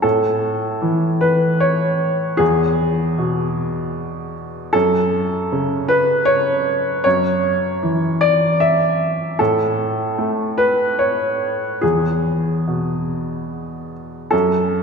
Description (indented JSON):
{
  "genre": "neoclassical minimalist piano",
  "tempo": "70-79 BPM",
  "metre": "3/4",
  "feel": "rubato",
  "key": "F# minor",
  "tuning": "A4 = 439 Hz",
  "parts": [
    { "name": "clear upright piano", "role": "solo", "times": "0.0-14.8 s", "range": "E2 to E5", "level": "-16 LUFS", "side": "equal", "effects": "none" }
  ],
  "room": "wet church reverb, RT60 3.0 s",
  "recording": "recorded in a church or concert hall",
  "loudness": "-16 LUFS",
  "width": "side -5 dB against mid",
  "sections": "0.0-14.3 A section",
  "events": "none",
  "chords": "0.0 A; 2.4 E; 4.7 F#m7; 9.4 N.C.; 11.8 E; 14.3 F#m"
}